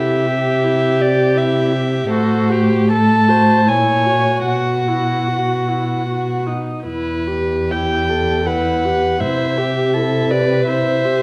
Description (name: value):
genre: classical, slow romantic movement for string quartet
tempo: 76 BPM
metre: 3/4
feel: uneven beats, rubato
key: unclear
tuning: A4 = 439 Hz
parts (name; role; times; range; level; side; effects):
- dark violin; melody; 0.0-11.2 s; B4 to A5; -22 LUFS; equal; none
- dark violin; second line; 0.0-11.2 s; F#4 to C#5; -24 LUFS; equal; none
- warm viola; accompaniment; 0.0-11.2 s; D#4 to A4; -24 LUFS; equal; none
- dark cello; bass; 0.0-11.2 s; E2 to C3; -22 LUFS; equal; none
room: wet recital hall reverb, RT60 1.3 s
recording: none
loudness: -17 LUFS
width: mono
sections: 0.0-11.2 A section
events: none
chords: 0.0 C; 2.1 F#dim/A; 3.7 F#7/A#; 4.5 Bsus4; 6.1 B; 6.9 Em; 9.2 C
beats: 0.64 1.36 | 2.11 2.91 3.68 | 4.48 5.29 6.08 | 6.87 7.71 8.48 | 9.21 9.94 10.67